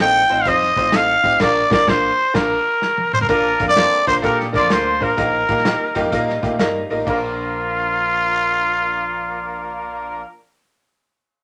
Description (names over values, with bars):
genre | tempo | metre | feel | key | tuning
uptempo 1960s-style soul | 127 BPM | 4/4 | swing 66% on 8ths | Bb major | A4 = 440 Hz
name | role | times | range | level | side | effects
growling trumpet | melody | 0.0-10.2 s | F4 to G5 | -19 LUFS | equal | none
bright upright piano | accompaniment | 0.0-10.2 s | Bb3 to C5 | -24 LUFS | equal | none
fingered electric bass | bass | 0.0-10.2 s | F1 to Bb2 | -33 LUFS | equal | none
warm soul drum kit | drums | 0.3-7.2 s | crash cymbal, hi-hat, kick drum, snare drum, toms | -26 LUFS | equal | none
dark horn section | second line | 3.3-10.2 s | D3 to D5 | -29 LUFS | equal | none
electric guitar through a small old amp | riff | 6.1-7.0 s | G3 to F4 | -30 LUFS | equal | none
room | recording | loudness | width
moderate studio ambience, RT60 0.5 s | none | -18 LUFS | mono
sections
0.0-3.3 A section; 3.3-7.1 B section; 7.1-10.8 C section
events
band accent 1.4-3.3; drum fill 2.8-3.3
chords
0.0 F7; 1.4 Bb; 5.2 Ebsus2/Bb; 7.1 Bb